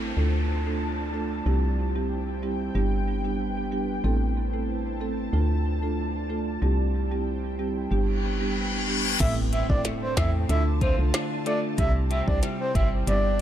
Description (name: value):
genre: dancehall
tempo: 93 BPM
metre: 4/4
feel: straight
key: unclear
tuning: A4 = 441 Hz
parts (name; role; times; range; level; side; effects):
- marimba with medium mallets; accompaniment; 0.0-13.2 s; G3 to A4; -29 LUFS; right 2 dB; analog delay
- ethereal airy pad; sustained chords; 0.0-13.4 s; G5 to A5; -36 LUFS; left 1 dB; ensemble chorus, built-in reverb, sidechain pumping
- woody FM bass; bass; 0.0-13.4 s; G1 to E2; -26 LUFS; equal; none
- downlifter, reverse cymbal and impact; sound effects; 0.0-11.8 s; none; -33 LUFS; left 3 dB; none
- breathy flute-like synth lead; melody; 9.2-13.4 s; C5 to E5; -29 LUFS; right 1 dB; chorus, analog delay
- electric guitar at the edge of break-up; arpeggios; 9.2-13.4 s; G2 to F4; -33 LUFS; left 4 dB; ensemble chorus
- glitchy drum kit; drums; 9.2-13.2 s; crash cymbal, hi-hat, kick drum, rim click, snare drum; -27 LUFS; equal; none
room: little or no reverb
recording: echo-heavy mix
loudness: -23 LUFS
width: side -11 dB against mid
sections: 0.0-9.2 A section; 9.2-13.4 B section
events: reverse cymbal 8.2-9.2; impact 9.2-11.8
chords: 0.2 Dm; 1.5 C; 2.8 G; 4.0 Am; 5.3 Dm; 6.6 C; 7.9 G; 9.2 Am; 10.5 Dm; 11.8 C